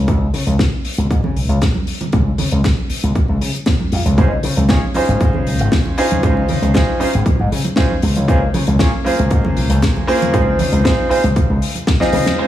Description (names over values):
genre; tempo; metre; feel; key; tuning
nu-disco, nu disco; 117 BPM; 4/4; straight; Db major; A4 = 435 Hz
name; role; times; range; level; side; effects
slap bass with an envelope filter; bass; 0.0-12.2 s; Ab1 to Db3; -16 LUFS; equal; none
electronic kick drum; drums; 0.1-12.0 s; none; -16 LUFS; equal; overdrive, studio reverb
tight funk drum kit; drums; 0.1-12.5 s; crash cymbal, hi-hat, snare drum, tambourine; -23 LUFS; left 2 dB; low-pass filter on hats, studio reverb, low-pass filter on cymbals, low-pass filter on snare, low-pass filter on perc, low-pass filter on room
congas; percussion; 0.5-12.4 s; none; -25 LUFS; right 2 dB; analog delay
clear baby grand piano; accompaniment; 4.2-12.5 s; Bb3 to Eb5; -18 LUFS; right 1 dB; analog delay
clear studio string section; sustained chords; 12.4-12.5 s; Ab3 to C5; -21 LUFS; right 1 dB; sidechain pumping, low-pass filter
room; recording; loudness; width
light reverb, studio reverb; echo-heavy mix, small room reverb; -13 LUFS; side -12 dB against mid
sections
0.0-12.4 A section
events
drum fill 12.0-12.4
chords
0.0 Db5; 2.1 N.C.; 4.2 Dbmaj7; 8.0 Bbm7/Db; 10.3 Fm7/Db